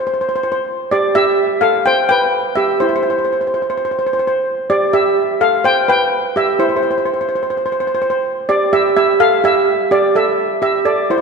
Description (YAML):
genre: calypso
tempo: 127 BPM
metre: 4/4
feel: swing 53% on 16ths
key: unclear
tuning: A4 = 440 Hz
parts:
  - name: steel pan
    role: solo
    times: 0.0-11.2 s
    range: E4 to G5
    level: -13 LUFS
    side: right 1 dB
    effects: none
room: wet concert hall reverb, RT60 2.5 s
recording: none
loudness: -13 LUFS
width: side -4 dB against mid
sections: 0.0-11.2 A section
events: none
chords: 0.0 N.C.; 0.9 Fmaj13/G; 1.9 C5; 2.8 N.C.; 4.7 Fmaj9/G; 5.6 N.C.; 8.5 Emadd11/G; 10.4 A5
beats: 0.44 | 0.91 1.38 1.86 2.33 | 2.80 3.28 3.75 4.22 | 4.70 5.17 5.64 6.12 | 6.59 7.07 7.54 8.01 | 8.48 8.96 9.43 9.91 | 10.38 10.85